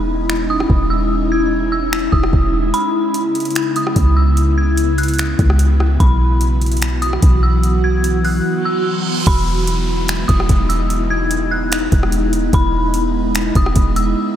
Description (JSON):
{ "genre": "hip hop, atmospheric cloud-rap", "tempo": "147 BPM", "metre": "4/4", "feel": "half-time", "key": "unclear", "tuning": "A4 = 439 Hz", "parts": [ { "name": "ethereal airy pad", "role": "sustained chords", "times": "0.0-14.4 s", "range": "C#3 to F#4", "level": "-19 LUFS", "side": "equal", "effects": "ensemble chorus, built-in reverb, sidechain pumping" }, { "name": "clean 808-style bass", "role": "bass", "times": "0.0-14.2 s", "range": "E1 to C#2", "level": "-16 LUFS", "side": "equal", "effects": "none" }, { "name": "smooth R&B drum kit", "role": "drums", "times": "0.3-14.1 s", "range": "finger snaps, hi-hat, kick drum, rim click", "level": "-20 LUFS", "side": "equal", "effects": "none" }, { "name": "dark detuned synth bell", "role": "melody", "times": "0.5-14.2 s", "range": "B5 to G#6", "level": "-23 LUFS", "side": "equal", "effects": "chorus, tape echo" }, { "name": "reverse cymbal and downlifter", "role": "sound effects", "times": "8.7-12.5 s", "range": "none", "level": "-28 LUFS", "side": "right 3 dB", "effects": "none" } ], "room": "moderate cathedral reverb, RT60 6.5 s", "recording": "dreamy mix soaked in reverb", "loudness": "-13 LUFS", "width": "side -10 dB against mid", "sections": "0.0-9.3 A section; 9.3-14.4 B section", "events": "break 0.0-2.7, 2.7-3.6, 8.5-9.3, 14.2; reverse cymbal 8.7-9.3", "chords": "0.0 Emaj7; 2.7 C#m7; 6.0 Bsus4; 9.3 Emaj7" }